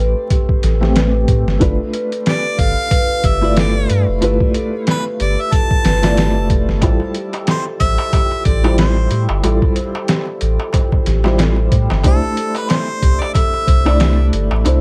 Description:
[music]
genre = trip hop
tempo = 92 BPM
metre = 4/4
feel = swing 57% on 16ths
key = unclear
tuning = A4 = 440 Hz
[part]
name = felt-muted upright piano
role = accompaniment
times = 0.0-14.8 s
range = G3 to D5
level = -24 LUFS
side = equal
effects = tremolo
[part]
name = large celesta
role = arpeggios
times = 0.0-14.8 s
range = G4 to C5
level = -26 LUFS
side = equal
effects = tape echo
[part]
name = warm sub bass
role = bass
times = 0.0-14.8 s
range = F1 to A2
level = -18 LUFS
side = equal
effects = none
[part]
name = trip hop sampler-style drum kit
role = drums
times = 0.3-14.8 s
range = hi-hat, kick drum, snare drum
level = -19 LUFS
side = equal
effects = overdrive, small room ambience
[part]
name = clear harmonica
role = melody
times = 2.3-14.3 s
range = A4 to A5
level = -25 LUFS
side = equal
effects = dub echo
[part]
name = darbuka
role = percussion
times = 6.8-14.8 s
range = none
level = -31 LUFS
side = equal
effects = none
[sound]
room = small room ambience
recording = dark, warm production, vinyl crackle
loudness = -16 LUFS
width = mono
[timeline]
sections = 0.0-14.8 A section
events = none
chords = 0.0 Am9; 1.6 G13; 6.8 Fmaj9; 12.0 C69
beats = 0.30 0.95 | 1.61 2.26 2.91 3.56 | 4.21 4.87 5.52 6.17 | 6.82 7.48 8.13 8.78 | 9.43 10.09 10.74 11.39 | 12.04 12.69 13.35 14.00 | 14.65

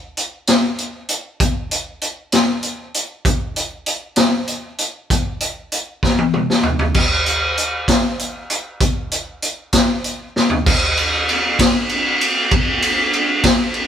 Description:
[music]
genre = rock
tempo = 65 BPM (dotted quarters)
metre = 6/8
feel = straight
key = none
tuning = none
[part]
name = raw garage drum kit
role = drums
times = 0.2-13.9 s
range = crash cymbal, hi-hat, kick drum, ride cymbal, snare drum, toms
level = -15 LUFS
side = equal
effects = none
[sound]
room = light reverb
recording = band playing live in one room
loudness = -16 LUFS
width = side -9 dB against mid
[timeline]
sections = 0.0-7.0 A section; 7.0-10.7 B section; 10.7-13.9 C section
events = drum fill 6.0-7.0, 10.4-10.7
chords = none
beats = 0.48 | 1.41 2.33 | 3.26 4.18 | 5.11 6.03 | 6.96 7.88 | 8.81 9.74 | 10.66 11.59 | 12.51 13.44

